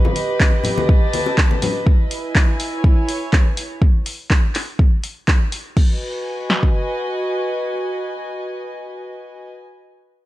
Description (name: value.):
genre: deep house.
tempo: 123 BPM.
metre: 4/4.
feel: swing 54% on 16ths.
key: G# phrygian.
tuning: A4 = 440 Hz.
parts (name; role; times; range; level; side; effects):
congas and bongos; percussion; 0.0-1.7 s; none; -24 LUFS; left 3 dB; sidechain pumping on perc.
rich chamber string section; texture; 0.0-9.6 s; E4 to A5; -24 LUFS; equal; sidechain pumping.
deep house drum kit; drums; 0.2-5.9 s; crash cymbal, handclaps, hi-hat; -23 LUFS; equal; none.
deep house drum kit; drums; 0.4-6.7 s; kick drum, snare drum; -14 LUFS; equal; none.
room: light reverb.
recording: none.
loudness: -16 LUFS.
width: side -16 dB against mid.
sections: 0.0-5.8 A section; 5.8-9.7 B section.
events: none.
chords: 0.0 Baug7; 1.9 E6; 3.8 N.C.; 5.8 G#m7.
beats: 0.40 0.89 1.38 | 1.86 2.35 2.84 3.33 | 3.82 4.30 4.79 5.28 | 5.77 6.25 6.74 7.23 | 7.72 8.21 8.69 9.18.